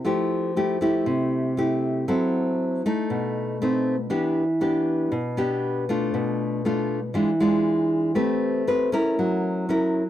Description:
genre	bossa nova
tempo	118 BPM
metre	4/4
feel	straight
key	unclear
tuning	A4 = 436 Hz
part	nylon-string guitar	solo	0.0-10.1 s	B2 to B4	-21 LUFS	equal	none
room	little or no reverb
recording	dry, close 1970s-style studio recording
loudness	-21 LUFS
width	side -12 dB against mid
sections	0.0-10.1 A section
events	none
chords	0.0 Fmaj9; 2.1 F#m7b5; 3.1 B7b9; 4.1 Em7; 6.1 Bm7b5; 7.1 E7b9; 8.2 Am9; 9.2 F#7

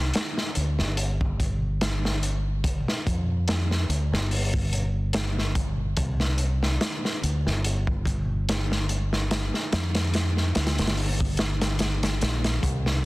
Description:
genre	trip hop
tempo	72 BPM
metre	4/4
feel	swing 55% on 16ths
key	unclear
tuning	A4 = 440 Hz
part	deep dub fingered electric bass	bass	0.0-13.1 s	G1 to F2	-25 LUFS	equal	none
part	crunchy breakbeat drum kit	drums	0.1-13.0 s	hi-hat, kick drum, snare drum	-26 LUFS	equal	none
room	little or no reverb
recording	dense, heavily limited modern master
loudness	-23 LUFS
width	side -20 dB against mid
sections	0.0-13.1 A section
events	none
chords	none

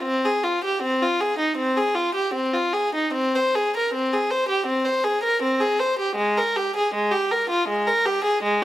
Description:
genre	classical, baroque-style suite movement for unaccompanied violin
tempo	79 BPM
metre	4/4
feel	rubato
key	C minor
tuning	A4 = 440 Hz
part	warm violin	solo	0.0-8.6 s	Ab3 to C5	-20 LUFS	equal	none
room	light reverb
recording	close, detailed microphones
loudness	-20 LUFS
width	side -14 dB against mid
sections	0.0-8.6 A section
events	none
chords	none

